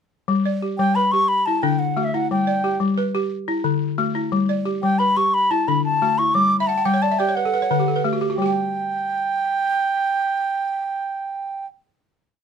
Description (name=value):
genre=west african traditional, West African string and xylophone music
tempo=119 BPM (dotted quarters)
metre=12/8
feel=straight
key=G lydian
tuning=A4 = 440 Hz
part: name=balafon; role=arpeggios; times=0.3-11.8 s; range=D3 to G5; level=-21 LUFS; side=left 2 dB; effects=none
part: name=bright baroque flute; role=melody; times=0.8-11.7 s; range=E5 to D6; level=-20 LUFS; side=right 1 dB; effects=none
room=little or no reverb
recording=close, detailed microphones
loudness=-18 LUFS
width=side -7 dB against mid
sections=0.3-8.4 A section; 8.4-12.4 final chord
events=balafon fill 6.6-8.4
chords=0.3 G; 1.3 D; 2.3 G; 3.3 D; 4.3 G; 5.3 D; 6.3 Gmaj7sus2; 7.4 D; 8.4 N.C.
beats=| 0.29 0.79 1.30 1.80 | 2.31 2.81 3.31 3.82 | 4.33 4.83 5.34 5.84 | 6.35 6.86 7.36 7.87 | 8.37 8.87 9.38 9.88 | 10.38 10.88 11.38